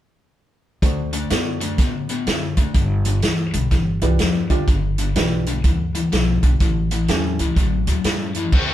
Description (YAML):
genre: electric blues shuffle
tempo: 125 BPM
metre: 4/4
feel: swing 63% on 8ths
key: D mixolydian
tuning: A4 = 441 Hz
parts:
  - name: warm upright piano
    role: accompaniment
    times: 0.8-7.4 s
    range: C#4 to D5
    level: -27 LUFS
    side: right 5 dB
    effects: none
  - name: overdriven electric guitar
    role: riff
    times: 0.8-8.7 s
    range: G2 to F#4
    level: -23 LUFS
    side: left 4 dB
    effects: none
  - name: upright bass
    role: bass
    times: 0.8-8.7 s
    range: F#1 to A2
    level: -22 LUFS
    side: equal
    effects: none
  - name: vintage drum kit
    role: drums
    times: 0.8-8.7 s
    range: crash cymbal, hi-hat, kick drum, snare drum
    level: -20 LUFS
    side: right 1 dB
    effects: none
room: light reverb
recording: band playing live in one room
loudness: -17 LUFS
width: side -12 dB against mid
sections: 0.8-8.5 A section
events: none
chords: 0.8 D7; 2.8 G7; 6.6 A7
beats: | 0.82 1.31 1.79 2.27 | 2.75 3.23 3.72 4.20 | 4.68 5.16 5.64 6.12 | 6.60 7.08 7.57 8.05 | 8.53